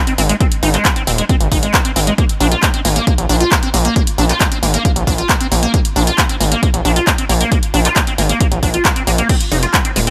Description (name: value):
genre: uplifting trance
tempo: 135 BPM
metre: 4/4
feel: straight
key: unclear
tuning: A4 = 439 Hz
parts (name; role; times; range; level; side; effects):
- liquid acid bass; arpeggios; 0.0-10.1 s; Ab3 to F4; -21 LUFS; equal; ensemble chorus, sidechain pumping, tape echo
- techno drum kit; drums; 0.1-10.1 s; crash cymbal, handclaps, hi-hat; -20 LUFS; equal; sidechain pumping on hats, sidechain pumping on cymbals
- gritty driven synth bass; bass; 0.2-10.1 s; Eb1 to Bb1; -18 LUFS; equal; sidechain pumping
- electronic kick drum; drums; 0.4-9.8 s; none; -18 LUFS; equal; none
room: digital ambience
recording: none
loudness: -14 LUFS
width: mono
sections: 0.0-10.1 A section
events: none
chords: 0.0 Ab; 2.2 N.C.; 9.3 Fm7